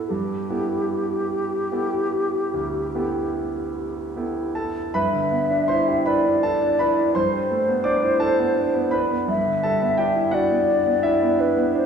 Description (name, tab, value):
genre	classical, impressionist duo for flute and grand piano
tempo	48-58 BPM (dotted quarters)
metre	12/8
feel	rubato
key	unclear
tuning	A4 = 440 Hz
part	mellow hollow silver concert flute	melody	0.0-11.9 s	G4 to E5	-23 LUFS	left 2 dB	none
part	clear concert grand piano	accompaniment	0.0-11.9 s	D2 to D6	-22 LUFS	right 2 dB	none
room	wet recital hall reverb, RT60 1.7 s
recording	recorded in a church or concert hall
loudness	-19 LUFS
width	side -7 dB against mid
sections	0.0-4.9 A section; 4.9-11.9 B section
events	none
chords	0.1 G69; 4.9 Am11/G; 9.3 Em7/G